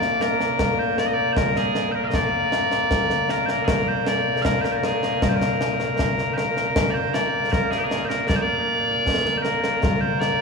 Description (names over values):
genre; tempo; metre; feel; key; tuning
scottish traditional, Scottish pipe music; 78 BPM; 2/4; straight; Bb mixolydian; A4 = 440 Hz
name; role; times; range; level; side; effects
loud bright bagpipes; melody; 0.0-10.4 s; Bb2 to F5; -21 LUFS; equal; none
concert snare drum and concert bass drum; drums; 0.0-10.4 s; none; -24 LUFS; left 1 dB; none
room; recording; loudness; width
wet cathedral reverb, RT60 6.3 s; recorded in a church or concert hall, small room ambience; -19 LUFS; side -4 dB against mid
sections
0.0-6.8 A section; 6.8-10.4 A section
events
none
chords
none